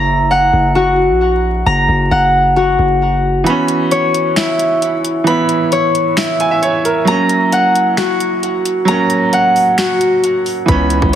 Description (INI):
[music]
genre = hip hop, trap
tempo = 133 BPM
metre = 4/4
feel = half-time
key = unclear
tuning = A4 = 440 Hz
[part]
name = concert harp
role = arpeggios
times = 0.0-11.2 s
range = E4 to B5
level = -13 LUFS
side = left 1 dB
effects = ping-pong delay
[part]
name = hard-hitting 808-style bass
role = bass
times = 0.0-3.4, 10.7-11.2 s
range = F#1 to C#2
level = -16 LUFS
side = equal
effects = none
[part]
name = bright baby grand piano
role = accompaniment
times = 3.4-11.2 s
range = E3 to G#5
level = -16 LUFS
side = right 4 dB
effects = none
[part]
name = trap drum kit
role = drums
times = 3.5-11.1 s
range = finger snaps, hi-hat, kick drum, snare drum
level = -20 LUFS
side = equal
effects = none
[sound]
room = light reverb, digital ambience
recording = heavily compressed radio sound, multiband compression, vinyl crackle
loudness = -11 LUFS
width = side -10 dB against mid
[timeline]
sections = 0.0-11.2 A section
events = kick muted 3.5-10.7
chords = 0.0 F#; 3.5 C#m7; 7.1 F#